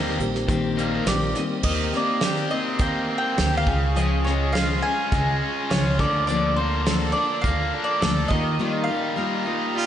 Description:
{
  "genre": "folk rock and heartland rock",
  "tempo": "104 BPM",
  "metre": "4/4",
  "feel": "straight",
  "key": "unclear",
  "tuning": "A4 = 438 Hz",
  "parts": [
    { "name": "mandolin", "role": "melody", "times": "0.0-9.9 s", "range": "G4 to Ab5", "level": "-27 LUFS", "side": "equal", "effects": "slapback echo, tape echo" },
    { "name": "picked steel-string acoustic guitar", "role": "accompaniment", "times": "0.0-9.9 s", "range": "Db3 to A4", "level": "-28 LUFS", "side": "left 5 dB", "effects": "slapback echo" },
    { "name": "tonewheel organ", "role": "sustained chords", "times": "0.0-9.9 s", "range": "Ab3 to Bb4", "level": "-35 LUFS", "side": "right 2 dB", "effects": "slow rotary speaker, chorus vibrato" },
    { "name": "overdriven electric guitar", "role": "riff", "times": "0.0-9.9 s", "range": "Db3 to Bb4", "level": "-27 LUFS", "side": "right 1 dB", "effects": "slapback echo" },
    { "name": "upright bass", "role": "bass", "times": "0.0-8.6 s", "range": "Bb1 to Eb2", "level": "-26 LUFS", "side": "right 1 dB", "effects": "none" },
    { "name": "soft brush drum kit", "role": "drums", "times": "0.2-8.4 s", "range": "crash cymbal, hi-hat, kick drum, snare drum", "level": "-26 LUFS", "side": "right 1 dB", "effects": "none" },
    { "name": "clear harmonica", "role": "second line", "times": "9.8-9.9 s", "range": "F4", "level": "-23 LUFS", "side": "right 4 dB", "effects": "none" }
  ],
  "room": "moderate lush hall reverb, RT60 2.7 s",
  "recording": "big arena sound, nothing above 10.4 kHz",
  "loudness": "-20 LUFS",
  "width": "side -10 dB against mid",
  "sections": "0.0-1.6 A section; 1.6-9.9 B section",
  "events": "none",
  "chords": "0.0 Eb6; 3.7 Db; 6.0 Bbmaj7/D; 8.3 Ebadd9"
}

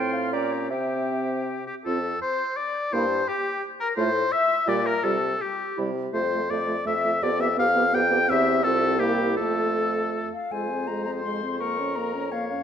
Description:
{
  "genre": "quick classical-period movement for wind quintet",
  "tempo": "154-174 BPM",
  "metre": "3/4",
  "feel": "rubato",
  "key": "F major",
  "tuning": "A4 = 439 Hz",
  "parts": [
    { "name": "concert flute", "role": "melody", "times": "0.0-12.6 s", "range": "G4 to Db6", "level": "-30 LUFS", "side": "left 6 dB", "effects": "none" },
    { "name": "warm oboe", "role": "second line", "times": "0.0-12.6 s", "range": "F4 to G5", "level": "-26 LUFS", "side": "left 2 dB", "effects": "none" },
    { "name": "clear French horn", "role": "accompaniment", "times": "0.0-12.6 s", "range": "G3 to Db4", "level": "-30 LUFS", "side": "right 2 dB", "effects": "none" },
    { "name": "mellow clarinet", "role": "accompaniment", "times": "0.0-12.6 s", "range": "E4 to G5", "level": "-32 LUFS", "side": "right 7 dB", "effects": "none" },
    { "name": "mellow bassoon", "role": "bass", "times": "0.0-12.6 s", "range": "C2 to C3", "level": "-30 LUFS", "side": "equal", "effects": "none" }
  ],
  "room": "moderate recital hall reverb, RT60 1.7 s",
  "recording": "none",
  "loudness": "-22 LUFS",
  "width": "side -8 dB against mid",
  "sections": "0.0-1.9 A section; 1.9-10.5 B section; 10.5-12.6 C section",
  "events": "none",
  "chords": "0.3 Gm/Bb; 0.7 C; 1.9 F; 2.9 C7/G; 4.0 F/A; 4.7 Gm7/Bb; 5.0 Csus4; 5.8 C; 6.1 F; 7.2 G7/F; 8.3 C/E; 8.6 F/C; 9.0 C7; 9.4 F; 10.5 Fm; 11.6 Bbm/F"
}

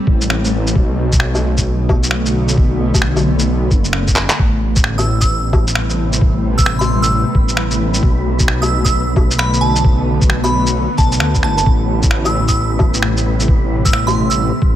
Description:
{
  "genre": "future garage",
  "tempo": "132 BPM",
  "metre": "4/4",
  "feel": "swing 63% on 16ths",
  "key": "A minor",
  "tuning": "A4 = 440 Hz",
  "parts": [
    { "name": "granular cloud pad", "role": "sustained chords", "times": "0.0-14.8 s", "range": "C3 to C4", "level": "-21 LUFS", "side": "left 1 dB", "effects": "built-in reverb, sidechain pumping" },
    { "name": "swelling detuned saw bass", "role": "bass", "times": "0.1-14.8 s", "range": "F#1 to D2", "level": "-17 LUFS", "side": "equal", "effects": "sidechain pumping" },
    { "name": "electronic kick drum", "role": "drums", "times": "0.1-14.7 s", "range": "none", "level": "-14 LUFS", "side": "equal", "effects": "none" },
    { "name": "electronic shaker, finger snaps, woodblock and handclaps", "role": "drums", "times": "0.2-14.4 s", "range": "none", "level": "-19 LUFS", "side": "left 1 dB", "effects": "none" },
    { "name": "wind-like tuned noise texture", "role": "texture", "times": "4.9-14.8 s", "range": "B3 to B4", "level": "-27 LUFS", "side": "right 1 dB", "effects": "built-in reverb" },
    { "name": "glassy synth bell", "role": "melody", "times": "5.0-14.6 s", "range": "A5 to E6", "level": "-21 LUFS", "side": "right 2 dB", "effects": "chorus, phaser, dub echo" }
  ],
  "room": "light reverb, digital ambience",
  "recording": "none",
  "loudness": "-12 LUFS",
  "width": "side -12 dB against mid",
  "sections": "0.0-14.8 A section",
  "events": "drum fill 4.2",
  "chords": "0.0 Am7; 0.8 Bm7; 4.4 Am7; 8.0 Bm7; 11.7 Am7"
}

